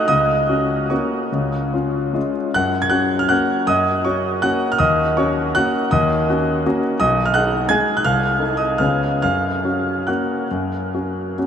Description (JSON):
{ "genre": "classical, piano waltz", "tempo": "137-177 BPM", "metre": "3/4", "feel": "rubato", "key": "F# major", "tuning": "A4 = 444 Hz", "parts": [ { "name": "clear grand piano", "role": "solo", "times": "0.0-11.5 s", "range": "B1 to G#6", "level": "-16 LUFS", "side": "equal", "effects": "none" } ], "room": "wet huge ambient reverb, RT60 7.8 s", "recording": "in a vast, echoing space", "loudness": "-16 LUFS", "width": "side -8 dB against mid", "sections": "0.0-11.5 A section", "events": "none", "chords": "0.1 F#/C#; 1.3 C#; 2.6 F#; 4.8 D#m7; 7.0 G#m7/B; 8.0 F7/C; 8.8 C#7; 9.2 F#", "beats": "| 0.08 0.49 0.91 | 1.32 1.74 2.16 | 2.55 2.92 3.31 | 3.69 4.06 4.44 | 4.80 5.18 5.55 | 5.92 6.28 6.65 | 7.00 7.34 7.69 | 8.04 8.40 8.80 | 9.22 9.64 10.08 | 10.50 10.93 11.37" }